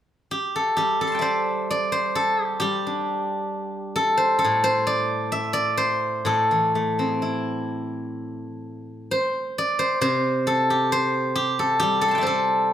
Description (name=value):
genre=chinese traditional, Chinese solo plucked strings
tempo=65 BPM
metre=2/4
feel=rubato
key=C gong mode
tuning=A4 = 440 Hz
part: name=steel-string zither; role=solo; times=0.3-12.7 s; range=A2 to C6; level=-21 LUFS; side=equal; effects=none
room=moderate recital hall reverb, RT60 1.5 s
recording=none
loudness=-20 LUFS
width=side -10 dB against mid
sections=0.8-12.7 A section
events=none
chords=none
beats=| 0.79 1.72 | 2.63 3.55 | 4.46 5.36 | 6.27 7.21 | 8.16 9.11 | 10.04 10.95 | 11.85